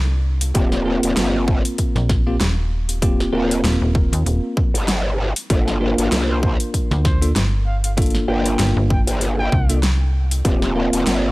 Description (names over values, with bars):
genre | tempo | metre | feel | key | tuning
glitch hop | 97 BPM | 4/4 | swing 56% on 16ths | G minor | A4 = 442 Hz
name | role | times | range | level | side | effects
slap-like FM bass | bass | 0.0-10.4 s | Eb1 to Eb2 | -18 LUFS | equal | none
dubstep drum kit | drums | 0.4-11.2 s | hi-hat, snare drum | -24 LUFS | equal | studio reverb
bell-like tine electric piano | stabs | 0.5-11.3 s | Bb3 to Bb4 | -22 LUFS | equal | fast stereo tremolo, vintage 12-bit sampler grit, sidechain pumping, tape echo
growl bass | bass | 0.6-11.3 s | Eb1 to C2 | -21 LUFS | equal | chorus
electronic kick drum | drums | 0.6-10.6 s | none | -18 LUFS | equal | studio reverb
breathy trumpet | melody | 6.3-9.8 s | C5 to G5 | -31 LUFS | equal | tape echo
room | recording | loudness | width
little or no reverb | dry, gritty hardware recording | -16 LUFS | side -21 dB against mid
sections
0.0-11.3 A section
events
none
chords
0.0 N.C.; 0.6 Eb69; 5.5 Gm9; 10.4 Eb69